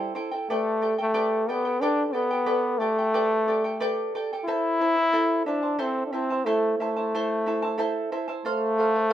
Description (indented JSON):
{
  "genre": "andean folk",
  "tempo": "90 BPM",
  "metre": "3/4",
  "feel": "straight",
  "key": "A minor",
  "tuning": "A4 = 441 Hz",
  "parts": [
    { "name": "trombone with straight mute", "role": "melody", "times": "0.0-9.1 s", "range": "G3 to E4", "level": "-24 LUFS", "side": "left 1 dB", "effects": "none" },
    { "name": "charango", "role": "accompaniment", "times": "0.0-9.1 s", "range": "E4 to A5", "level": "-28 LUFS", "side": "right 2 dB", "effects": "none" }
  ],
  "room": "light reverb",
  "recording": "none",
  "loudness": "-23 LUFS",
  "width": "side -11 dB against mid",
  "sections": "0.0-8.4 A section",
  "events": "none",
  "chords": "0.5 G/A; 4.5 Am; 8.4 F"
}